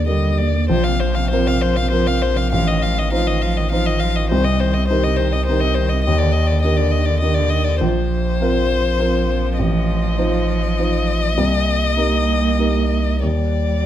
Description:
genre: neoclassical piano and strings.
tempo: 100 BPM.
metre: 3/4.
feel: rubato.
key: Bb major.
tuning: A4 = 440 Hz.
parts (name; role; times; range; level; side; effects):
rich violin; melody; 0.0-13.9 s; C5 to F5; -21 LUFS; left 5 dB; slapback echo.
rich cello; second line; 0.0-13.9 s; C3 to Bb3; -26 LUFS; right 8 dB; none.
dark upright piano; accompaniment; 0.0-13.9 s; A1 to C5; -22 LUFS; equal; none.
saturated sub bass; bass; 0.0-13.9 s; A1 to Eb2; -19 LUFS; equal; none.
room: light reverb.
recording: close, detailed microphones.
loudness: -16 LUFS.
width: side -11 dB against mid.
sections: 0.7-13.9 A section.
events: none.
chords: 0.0 Ebmaj7; 0.7 Bbsus2; 2.5 F7/A; 4.3 Cm7; 6.1 Ebmaj7; 7.8 Bbsus2; 9.6 F7/A; 11.4 Cm7; 13.2 Ebmaj7.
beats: 0.07 | 0.70 1.31 1.91 | 2.52 3.12 3.71 | 4.31 4.90 5.48 | 6.06 6.64 7.22 | 7.81 8.40 8.99 | 9.58 10.18 10.78 | 11.38 11.97 12.59 | 13.24.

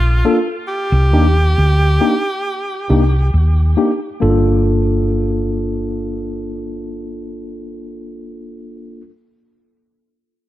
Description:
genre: lovers rock reggae.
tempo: 68 BPM.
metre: 4/4.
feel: straight.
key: G minor.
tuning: A4 = 440 Hz.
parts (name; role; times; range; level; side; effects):
edgy tenor saxophone; melody; 0.0-3.3 s; F4 to G4; -21 LUFS; right 1 dB; tape echo.
hollow-body short-scale fingered electric bass; bass; 0.0-9.0 s; G1 to Eb2; -14 LUFS; equal; none.
mellow tine electric piano; accompaniment; 0.2-9.0 s; Bb3 to A4; -19 LUFS; left 1 dB; fast stereo tremolo, slapback echo.
room: little or no reverb.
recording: dry, close 1970s-style studio recording.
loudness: -13 LUFS.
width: side -14 dB against mid.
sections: 0.0-4.2 A section; 4.2-7.7 B section.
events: none.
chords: 0.0 Gm7 (rootless); 0.7 Cm9; 4.2 Gm7.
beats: | 0.68 1.56 2.44 3.33 | 4.21 5.09 5.97 6.86.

